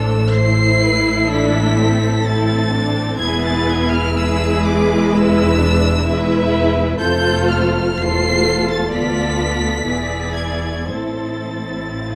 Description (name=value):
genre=classical, slow romantic movement for string orchestra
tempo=54-67 BPM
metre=4/4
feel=rubato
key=A minor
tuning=A4 = 440 Hz
part: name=dark chamber violin section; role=melody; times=0.0-12.2 s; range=D6 to C7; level=-25 LUFS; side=equal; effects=none
part: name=rich chamber violin section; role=second line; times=0.0-12.2 s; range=F4 to E5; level=-25 LUFS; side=equal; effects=none
part: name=warm studio viola section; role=accompaniment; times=0.0-12.2 s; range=G#3 to F4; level=-22 LUFS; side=equal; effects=none
part: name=rich chamber cello section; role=bass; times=0.0-12.2 s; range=D2 to A2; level=-24 LUFS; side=equal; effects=none
part: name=rich chamber double bass section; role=bass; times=0.0-12.2 s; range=E1 to D2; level=-24 LUFS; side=equal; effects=none
room=moderate scoring stage reverb, RT60 1.8 s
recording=none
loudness=-17 LUFS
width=mono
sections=0.0-12.2 A section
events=none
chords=0.0 Am; 3.2 E7; 7.0 F; 8.9 Bm7b5/D; 9.9 E7; 10.9 Am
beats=0.30 1.31 2.25 | 3.19 4.15 5.11 6.07 | 7.00 8.01 8.92 9.86 | 10.90 12.00